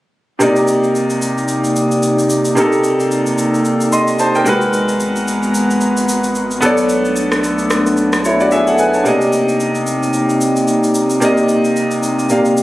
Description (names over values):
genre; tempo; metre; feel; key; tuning
amapiano; 111 BPM; 4/4; swing 58% on 16ths; unclear; A4 = 441 Hz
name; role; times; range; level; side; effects
clear concert grand piano; accompaniment; 0.4-12.6 s; C3 to C6; -14 LUFS; equal; none
airy breathy pad; sustained chords; 1.0-12.6 s; C3 to Bb5; -18 LUFS; equal; chorus
electronic shaker and rim click; drums; 0.4-12.6 s; none; -24 LUFS; equal; none
round analog bass; bass; 4.7-9.0 s; Ab1 to B1; -27 LUFS; equal; none
room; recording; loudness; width
light reverb, digital ambience; recorded on a phone in the room, club reverb; -12 LUFS; side -16 dB against mid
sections
0.4-9.1 A section; 9.1-12.6 B section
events
none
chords
0.4 Cm9; 4.5 Abm9; 6.6 Bm9; 9.1 Cm9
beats
| 0.41 0.95 1.49 2.03 | 2.57 3.11 3.65 4.19 | 4.73 5.27 5.81 6.35 | 6.89 7.43 7.98 8.52 | 9.06 9.60 10.14 10.68 | 11.22 11.76 12.30